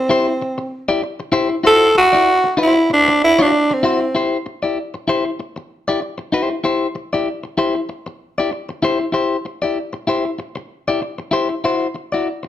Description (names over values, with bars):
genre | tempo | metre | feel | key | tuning
funk | 96 BPM | 4/4 | swing 56% on 16ths | unclear | A4 = 441 Hz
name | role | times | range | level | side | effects
growling tenor saxophone | melody | 0.0-4.2 s | C4 to A4 | -13 LUFS | right 1 dB | none
clean electric guitar | accompaniment | 0.1-12.5 s | E4 to D5 | -18 LUFS | left 3 dB | none
room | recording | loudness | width
moderate large studio reverb, RT60 0.9 s | dark, warm production | -15 LUFS | side -12 dB against mid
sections
0.0-4.1 A section; 4.1-12.5 B section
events
tenor saxophone solo 0.0-4.1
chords
0.0 C; 1.7 D9; 4.1 Em; 11.6 D9